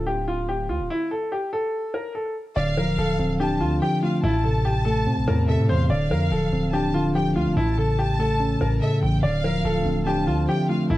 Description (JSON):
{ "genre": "hip hop", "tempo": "144 BPM", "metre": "4/4", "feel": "half-time", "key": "D minor", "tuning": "A4 = 440 Hz", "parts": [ { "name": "clear upright piano", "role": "melody", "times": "0.0-11.0 s", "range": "E4 to D5", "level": "-26 LUFS", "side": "equal", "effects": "low-pass filter" }, { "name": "sweeping resonant pad", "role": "sustained chords", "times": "0.0-0.9, 9.2-11.0 s", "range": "D3 to E5", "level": "-33 LUFS", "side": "equal", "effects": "chorus" }, { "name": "hard-hitting 808-style bass", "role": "bass", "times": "0.0-11.0 s", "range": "D1 to C3", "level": "-27 LUFS", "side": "equal", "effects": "none" }, { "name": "dark studio violin section", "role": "second line", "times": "2.6-11.0 s", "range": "E5 to A5", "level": "-31 LUFS", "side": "equal", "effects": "plate reverb" }, { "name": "mellow tine electric piano", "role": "accompaniment", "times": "2.6-11.0 s", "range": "A2 to D4", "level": "-22 LUFS", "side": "equal", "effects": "low-pass filter" } ], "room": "moderate studio reverb, RT60 0.6 s", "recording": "cassette tape", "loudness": "-20 LUFS", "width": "side -16 dB against mid", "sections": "0.0-2.6 A section; 2.6-11.0 B section", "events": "none", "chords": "0.0 Dm7; 0.9 N.C.; 2.6 Dm7; 4.2 Am; 5.9 Dm7; 7.6 A; 9.2 Dm7", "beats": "0.07 0.48 | 0.90 1.32 1.73 2.15 | 2.57 2.98 3.40 3.82 | 4.23 4.65 5.07 5.48 | 5.90 6.32 6.73 7.15 | 7.57 7.98 8.40 8.82 | 9.23 9.65 10.07 10.48 | 10.90" }